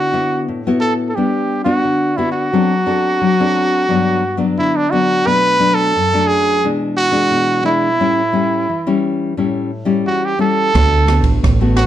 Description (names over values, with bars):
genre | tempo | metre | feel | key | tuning
samba and choro | 88 BPM | 4/4 | straight | D major | A4 = 442 Hz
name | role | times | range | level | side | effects
brilliant trumpet | melody | 0.0-11.8 s | D4 to B4 | -15 LUFS | right 2 dB | none
nylon-string guitar | accompaniment | 0.0-11.9 s | F#2 to A4 | -17 LUFS | left 3 dB | none
fingered electric bass with an envelope filter | bass | 10.8-11.9 s | A1 to D2 | -14 LUFS | right 2 dB | none
open jazz drum kit | drums | 10.8-11.9 s | kick drum, ride cymbal, rim click | -17 LUFS | right 2 dB | none
room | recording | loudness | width
moderate studio reverb, RT60 0.8 s | dark, warm production | -13 LUFS | side -11 dB against mid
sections
0.0-11.9 A section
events
none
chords
0.0 D69; 1.2 Gmaj7; 2.5 D7/F#; 3.9 Gmaj7; 5.3 Bm7; 6.6 E7/B; 8.0 A7; 10.7 D6